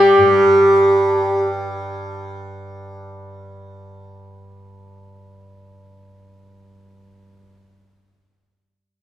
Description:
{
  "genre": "indian classical, Hindustani",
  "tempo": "free time",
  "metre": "none",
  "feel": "none",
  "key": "unclear",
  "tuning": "A4 = 440 Hz",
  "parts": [
    { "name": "bright reedy bansuri", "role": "melody", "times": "0.0-1.5 s", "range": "G4", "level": "-12 LUFS", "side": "equal", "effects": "none" },
    { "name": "tanpura", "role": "drone", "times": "0.0-7.3 s", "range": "G2 to G3", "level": "-25 LUFS", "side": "right 2 dB", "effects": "none" }
  ],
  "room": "wet recital hall reverb, RT60 1.3 s",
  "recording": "recorded in a church or concert hall",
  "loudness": "-13 LUFS",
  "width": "side -12 dB against mid",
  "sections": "none",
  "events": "none",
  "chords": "none"
}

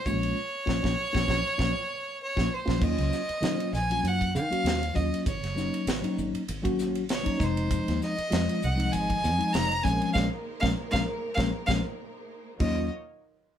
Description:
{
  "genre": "electric jazz fusion",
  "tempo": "98 BPM",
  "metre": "4/4",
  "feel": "swing 55% on 16ths",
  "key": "Eb dorian",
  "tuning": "A4 = 440 Hz",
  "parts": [
    { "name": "clear violin", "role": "melody", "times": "0.0-12.9 s", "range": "C5 to Bb5", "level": "-30 LUFS", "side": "right 1 dB", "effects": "none" },
    { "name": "mellow tine electric piano", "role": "accompaniment", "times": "0.1-12.9 s", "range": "F3 to Gb4", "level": "-30 LUFS", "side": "left 2 dB", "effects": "medium stereo tremolo" },
    { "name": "fingered electric bass", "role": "bass", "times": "0.1-12.9 s", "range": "F1 to Eb3", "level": "-30 LUFS", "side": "equal", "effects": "none" },
    { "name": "crisp fusion drum kit", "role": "drums", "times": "0.1-12.8 s", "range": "crash cymbal, hi-hat, kick drum, ride cymbal, snare drum", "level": "-32 LUFS", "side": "right 1 dB", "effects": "none" },
    { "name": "warm symphonic string section", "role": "sustained chords", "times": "7.7-12.9 s", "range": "Eb3 to Eb5", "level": "-39 LUFS", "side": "right 1 dB", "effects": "none" }
  ],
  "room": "moderate studio reverb, RT60 0.5 s",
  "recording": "band playing live in one room",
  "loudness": "-25 LUFS",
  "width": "side -9 dB against mid",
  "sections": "0.0-2.8 A section; 2.8-12.6 B section",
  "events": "band accent 0.4-2.8, 10.2-12.6; tine electric piano fill 1.6-2.8; drum fill 2.2-2.8, 12.0-12.6",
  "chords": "0.1 Bbm; 2.8 Ebm9; 5.3 Ab9sus4; 7.4 Fm7; 9.8 Bbm9; 12.6 Ebm9"
}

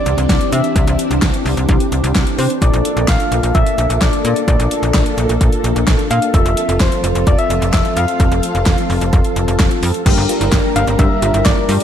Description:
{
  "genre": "synth-pop",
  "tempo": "129 BPM",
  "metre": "4/4",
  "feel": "straight",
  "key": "G dorian",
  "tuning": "A4 = 440 Hz",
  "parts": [
    { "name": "soft struck synth lead", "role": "melody", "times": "0.0-11.8 s", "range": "C5 to F5", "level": "-20 LUFS", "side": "left 2 dB", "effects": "chorus, tape echo" },
    { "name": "mellow synth brass", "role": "accompaniment", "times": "0.0-11.8 s", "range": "G3 to Bb4", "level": "-21 LUFS", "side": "left 1 dB", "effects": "chorus" },
    { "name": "string machine, full ensemble", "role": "sustained chords", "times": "0.0-11.8 s", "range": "E3 to Bb4", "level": "-22 LUFS", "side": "equal", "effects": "ensemble chorus" },
    { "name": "slap-like FM bass", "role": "bass", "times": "0.1-11.8 s", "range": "F1 to C3", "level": "-17 LUFS", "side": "equal", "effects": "none" },
    { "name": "deep house drum kit", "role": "drums", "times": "0.1-11.8 s", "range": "crash cymbal, handclaps, hi-hat, kick drum, snare drum", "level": "-16 LUFS", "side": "equal", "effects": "none" },
    { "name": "soft round pluck", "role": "arpeggios", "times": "10.1-11.8 s", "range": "C4 to G4", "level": "-24 LUFS", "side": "right 6 dB", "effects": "chorus, tape echo" }
  ],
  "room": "light reverb, digital ambience",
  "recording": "lossy compression artefacts",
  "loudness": "-12 LUFS",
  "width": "side -9 dB against mid",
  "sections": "0.0-10.1 A section; 10.1-11.8 B section",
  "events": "none",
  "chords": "0.0 Cadd9; 2.6 Bbmaj7; 6.3 Fmaj7; 10.1 Gm"
}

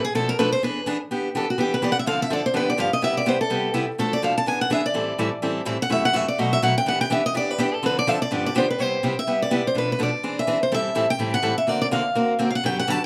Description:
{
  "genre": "jazz",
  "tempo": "250 BPM",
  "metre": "4/4",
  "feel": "swing 56% on 8ths",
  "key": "E minor",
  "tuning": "A4 = 440 Hz",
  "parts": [
    { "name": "picked steel-string acoustic guitar", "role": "melody", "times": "0.0-13.0 s", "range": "F#4 to A5", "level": "-25 LUFS", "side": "equal", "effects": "plate reverb" },
    { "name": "picked steel-string acoustic guitar", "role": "accompaniment", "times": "0.1-13.0 s", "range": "F#2 to A#4", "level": "-26 LUFS", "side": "equal", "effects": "none" }
  ],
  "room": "wet small room ambience, RT60 0.5 s",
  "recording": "none",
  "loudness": "-23 LUFS",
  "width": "mono",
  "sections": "0.0-1.1 A section; 1.1-8.8 A section; 8.8-13.1 B section",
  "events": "steel-string acoustic guitar solo 0.0-1.1, 1.1-8.8",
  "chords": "0.1 Bm7b5; 0.6 E7; 1.1 Em7; 2.1 Dm7; 2.5 G7; 3.0 Cmaj7; 4.0 Bm7b5; 4.5 E7; 4.9 Am7; 5.9 F#m7b5; 6.4 B7; 6.9 Em7; 7.8 Dm7; 8.3 G7; 8.8 Cmaj7; 9.7 Bm7b5; 10.2 Eaug7; 10.7 Am7; 11.7 D7alt"
}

